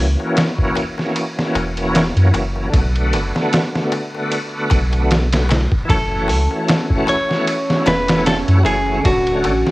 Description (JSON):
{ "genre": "trip hop", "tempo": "76 BPM", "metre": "4/4", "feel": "swing 55% on 16ths", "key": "F# minor", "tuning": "A4 = 441 Hz", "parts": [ { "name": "bright tonewheel organ", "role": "accompaniment", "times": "0.0-9.7 s", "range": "D3 to F#4", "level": "-21 LUFS", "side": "equal", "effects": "chorus vibrato, slow rotary speaker, tremolo, low-pass filter, tape echo" }, { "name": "soft dub sub bass", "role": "bass", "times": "0.0-9.6 s", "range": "D1 to F#2", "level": "-18 LUFS", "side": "equal", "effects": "none" }, { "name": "darbuka", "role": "percussion", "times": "0.2-9.7 s", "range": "none", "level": "-29 LUFS", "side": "left 8 dB", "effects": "none" }, { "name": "trip hop sampler-style drum kit", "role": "drums", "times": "0.4-9.7 s", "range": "hi-hat, kick drum, ride cymbal, snare drum", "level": "-19 LUFS", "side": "equal", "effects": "vintage 12-bit sampler grit, small room reverb" }, { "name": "clean electric guitar", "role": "melody", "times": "5.9-9.7 s", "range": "F#4 to C#5", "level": "-19 LUFS", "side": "equal", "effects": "cassette tape" }, { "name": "warbly tape-like pad", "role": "sustained chords", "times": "5.9-9.7 s", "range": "C#4", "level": "-27 LUFS", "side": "right 3 dB", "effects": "chorus, built-in reverb, vintage 12-bit sampler grit" } ], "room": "light reverb", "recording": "home recording on cassette", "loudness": "-15 LUFS", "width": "side -19 dB against mid", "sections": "0.0-9.7 A section", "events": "none", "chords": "0.0 F#7; 2.7 Bm7; 5.9 F#m7; 9.0 Dmaj7" }